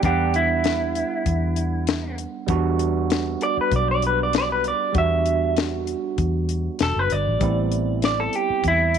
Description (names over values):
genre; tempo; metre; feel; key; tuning
straight-eighth soul blues; 98 BPM; 4/4; straight; E minor; A4 = 441 Hz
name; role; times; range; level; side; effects
electric guitar through a small old amp; melody; 0.0-9.0 s; D4 to E5; -22 LUFS; right 1 dB; none
overdriven tine electric piano; accompaniment; 0.0-9.0 s; G3 to F#5; -27 LUFS; right 9 dB; lush chorus
vintage muted fingered electric bass; bass; 0.0-9.0 s; E1 to E2; -24 LUFS; left 1 dB; none
tight funk drum kit; drums; 0.0-9.0 s; hi-hat, kick drum, snare drum; -25 LUFS; left 6 dB; vintage 12-bit sampler grit
room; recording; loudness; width
light reverb, small room reverb; 1960s-style stereo with parts hard left and right; -20 LUFS; side -8 dB against mid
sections
0.0-9.0 A section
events
clean electric guitar solo 0.0-9.0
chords
0.0 Em7; 7.4 Am7